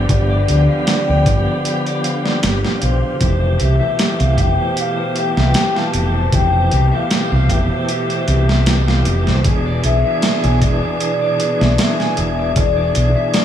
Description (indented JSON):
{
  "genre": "trip hop",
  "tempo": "77 BPM",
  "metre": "4/4",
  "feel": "swing 54% on 16ths",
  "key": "unclear",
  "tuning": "A4 = 440 Hz",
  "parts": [
    { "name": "pure breathy sine lead", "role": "melody", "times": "0.0-13.4 s", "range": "C5 to A5", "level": "-22 LUFS", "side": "left 2 dB", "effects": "phaser, wide subtle chorus, tape echo" },
    { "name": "tonewheel organ", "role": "accompaniment", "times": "0.0-13.4 s", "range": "B2 to G#4", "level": "-22 LUFS", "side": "equal", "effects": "overdrive, fast rotary speaker, tremolo, tape echo" },
    { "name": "clear studio string section", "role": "sustained chords", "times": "0.0-13.4 s", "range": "B2 to D3", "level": "-26 LUFS", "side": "right 1 dB", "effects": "none" },
    { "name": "electric guitar at the edge of break-up", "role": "arpeggios", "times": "0.0-13.4 s", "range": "G4 to G#5", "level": "-26 LUFS", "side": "left 1 dB", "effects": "tape echo" },
    { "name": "deep dub fingered electric bass", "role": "bass", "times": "0.0-13.1 s", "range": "E1 to D2", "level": "-16 LUFS", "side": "equal", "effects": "none" },
    { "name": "boom bap sampler-style drum kit", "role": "drums", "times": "0.1-13.4 s", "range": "hi-hat, kick drum, snare drum", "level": "-19 LUFS", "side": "right 1 dB", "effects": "overdrive" }
  ],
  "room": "moderate plate reverb, RT60 2.8 s",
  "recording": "dreamy mix soaked in reverb, studio reverb",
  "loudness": "-14 LUFS",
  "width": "side -10 dB against mid",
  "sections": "0.0-13.4 A section",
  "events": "none",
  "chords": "0.0 G7; 3.2 Fmaj9; 9.4 E7"
}